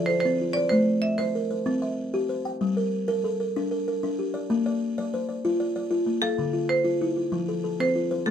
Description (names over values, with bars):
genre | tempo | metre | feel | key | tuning
southern african traditional | 127 BPM (dotted quarters) | 12/8 | straight | G dorian | A4 = 435 Hz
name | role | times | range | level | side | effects
marimba with medium hard mallets | melody | 0.0-1.8, 6.2-8.3 s | A4 to E5 | -26 LUFS | right 2 dB | none
buzzing kalimba | arpeggios | 0.0-8.3 s | D3 to G5 | -25 LUFS | left 1 dB | none
room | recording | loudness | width
wet small room reverb, RT60 0.5 s | heard from further back in the room | -23 LUFS | side -8 dB against mid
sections
0.0-8.3 A section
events
none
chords
0.0 F; 0.7 Am; 1.7 C; 2.6 Gm; 4.5 Bb; 6.4 Dm; 7.3 F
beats
0.24 | 0.72 1.19 1.66 2.13 | 2.60 3.08 3.55 4.02 | 4.49 4.96 5.43 5.91 | 6.38 6.85 7.32 7.79 | 8.26